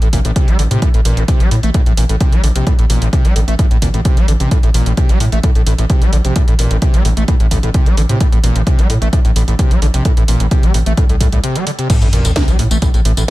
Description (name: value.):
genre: driving peak-time techno.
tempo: 130 BPM.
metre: 4/4.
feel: straight.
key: A phrygian.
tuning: A4 = 440 Hz.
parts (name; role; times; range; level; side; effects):
screaming distorted acid line; riff; 0.0-13.2 s; A2 to A3; -19 LUFS; equal; distortion, analog chorus, vintage 12-bit sampler grit, sidechain pumping, tape echo.
gritty driven synth bass; bass; 0.0-13.2 s; A1 to A2; -15 LUFS; equal; sidechain pumping.
techno drum kit; drums; 0.0-13.3 s; crash cymbal, hi-hat, snare drum, tambourine; -23 LUFS; right 2 dB; overdrive, sidechain pumping on hats, sidechain pumping on cymbals, sidechain pumping on perc.
electronic kick drum; drums; 0.1-12.9 s; none; -13 LUFS; equal; none.
sub drop; sound effects; 11.9-13.3 s; none; -19 LUFS; equal; none.
room: little or no reverb.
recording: none.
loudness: -11 LUFS.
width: side -17 dB against mid.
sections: 0.0-11.9 A section; 11.9-13.3 B section.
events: break 11.4-11.9; drop 11.9-13.3; impact 11.9-13.3.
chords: 0.0 Am; 11.9 N.C..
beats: 0.36 | 0.82 1.28 1.74 2.21 | 2.67 3.13 3.59 4.05 | 4.51 4.97 5.44 5.90 | 6.36 6.82 7.28 7.74 | 8.21 8.67 9.13 9.59 | 10.05 10.51 10.97 11.44 | 11.90 12.36 12.82 13.28.